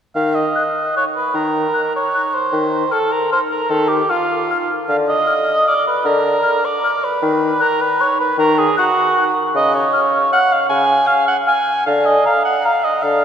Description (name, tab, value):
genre	classical, orchestral ballroom waltz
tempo	154 BPM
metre	3/4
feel	uneven beats, rubato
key	Eb minor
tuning	A4 = 440 Hz
part	mellow cor anglais	second line	0.2-13.2 s	F4 to Ab5	-16 LUFS	right 1 dB	none
part	warm bassoon	accompaniment	0.2-13.2 s	Db3 to Eb3	-20 LUFS	left 1 dB	none
part	mellow hollow concert flute	second line	0.6-12.7 s	Bb5 to Gb6	-23 LUFS	left 4 dB	none
room	wet cathedral reverb, RT60 4.4 s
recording	none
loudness	-14 LUFS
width	side -8 dB against mid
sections	0.2-13.2 A section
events	none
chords	0.2 Eb5; 4.9 Bb/D; 7.2 Ebm; 9.6 Db; 11.9 Bb/D (rootless)